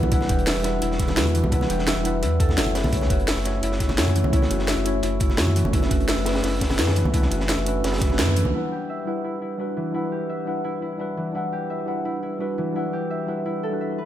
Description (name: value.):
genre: liquid drum and bass.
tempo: 171 BPM.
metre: 4/4.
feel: straight.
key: E dorian.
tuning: A4 = 440 Hz.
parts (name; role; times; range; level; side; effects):
mellow tine electric piano; accompaniment; 0.0-14.0 s; G3 to F#5; -26 LUFS; equal; phaser, tape echo.
concert harp; arpeggios; 0.0-14.1 s; E3 to E5; -29 LUFS; left 1 dB; low-pass filter, dub echo.
warm sub bass; bass; 0.0-8.5 s; E1 to F#2; -24 LUFS; equal; none.
congas; percussion; 0.0-8.5 s; none; -30 LUFS; right 1 dB; none.
crunchy breakbeat drum kit; drums; 0.1-8.4 s; hi-hat, snare drum; -31 LUFS; equal; high-pass filter on hats, studio ambience, high-pass filter on snare, high-pass filter on room.
electronic kick drum; drums; 0.1-8.1 s; none; -23 LUFS; equal; studio ambience.
garage drum kit; drums; 0.1-8.4 s; hi-hat, snare drum; -26 LUFS; equal; overdrive, low-pass filter on hats, studio ambience, low-pass filter on snare.
room: light reverb, studio reverb.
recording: none.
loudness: -20 LUFS.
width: side -12 dB against mid.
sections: 0.0-8.5 A section; 8.5-14.1 B section.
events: drop 0.0-8.5; kick drops out 8.2-8.5; band accent 8.2.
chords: 0.0 Em9; 2.8 F#m7; 5.7 Bm9/F#; 8.5 Em9.